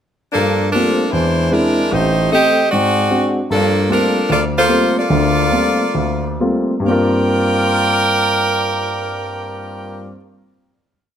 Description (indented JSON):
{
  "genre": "jazz",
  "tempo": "129-152 BPM",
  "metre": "4/4",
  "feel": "swing 66% on 8ths",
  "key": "G minor",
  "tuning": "A4 = 440 Hz",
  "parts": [
    { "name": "edgy saxophone section", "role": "melody", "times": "0.3-10.1 s", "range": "F3 to G5", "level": "-16 LUFS", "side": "equal", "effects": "none" },
    { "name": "warm grand piano", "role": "accompaniment", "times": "0.3-10.2 s", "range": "A1 to Bb4", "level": "-17 LUFS", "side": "equal", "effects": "none" }
  ],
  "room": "moderate large studio reverb, RT60 1.2 s",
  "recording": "close, detailed microphones",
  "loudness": "-13 LUFS",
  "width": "side -9 dB against mid",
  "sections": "0.3-6.9 A section; 6.9-10.6 final chord",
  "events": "slowing down 3.5-6.9",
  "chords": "0.3 Gm11; 1.1 E7b13; 1.9 Am7b5; 2.7 Ab7#11; 3.5 Gm11; 6.9 Gm7"
}